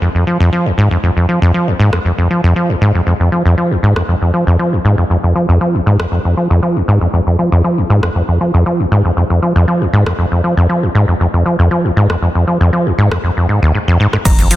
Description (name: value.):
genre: acid house.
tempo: 118 BPM.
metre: 4/4.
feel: straight.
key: F minor.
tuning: A4 = 440 Hz.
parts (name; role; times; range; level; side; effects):
acid bass, saw; riff; 0.0-14.6 s; Eb2 to F3; -10 LUFS; equal; cassette tape, sidechain pumping, ping-pong delay.
booming analog drum machine; drums; 1.9-14.6 s; cowbell, crash cymbal, hi-hat, rim click, shaker; -24 LUFS; equal; none.
round analog bass; bass; 14.3-14.6 s; F1; -19 LUFS; equal; none.
electronic kick drum; drums; 14.3-14.4 s; none; -10 LUFS; equal; none.
room: light reverb.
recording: dense, heavily limited modern master.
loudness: -10 LUFS.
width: side -15 dB against mid.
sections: 0.0-14.3 A section.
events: none.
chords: none.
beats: | 0.02 0.52 1.03 1.54 | 2.05 2.56 3.07 3.58 | 4.08 4.59 5.10 5.61 | 6.12 6.63 7.13 7.64 | 8.15 8.66 9.17 9.68 | 10.19 10.69 11.20 11.71 | 12.22 12.73 13.24 13.74 | 14.25.